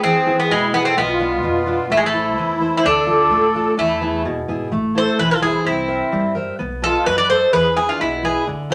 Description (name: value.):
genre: greek folk, Greek bouzouki band.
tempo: 128 BPM.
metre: 2/4.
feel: straight.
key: A harmonic minor.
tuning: A4 = 439 Hz.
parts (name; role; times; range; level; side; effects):
Greek bouzouki; melody; 0.0-8.7 s; G#3 to D5; -20 LUFS; equal; none.
musette accordion; second line; 0.0-8.7 s; B3 to C5; -25 LUFS; equal; none.
fingerpicked steel-string acoustic guitar; accompaniment; 0.0-8.7 s; B2 to E5; -25 LUFS; equal; none.
upright bass; bass; 1.0-8.7 s; E1 to G2; -34 LUFS; equal; none.
room: wet studio reverb, RT60 0.6 s.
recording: none.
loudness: -18 LUFS.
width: mono.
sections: 0.0-4.7 A section; 4.7-8.7 B section.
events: none.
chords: 0.0 E; 1.0 Bdim; 1.9 Am; 2.8 Dm; 3.8 E; 4.7 Am; 5.7 C7; 6.6 B7; 7.5 E.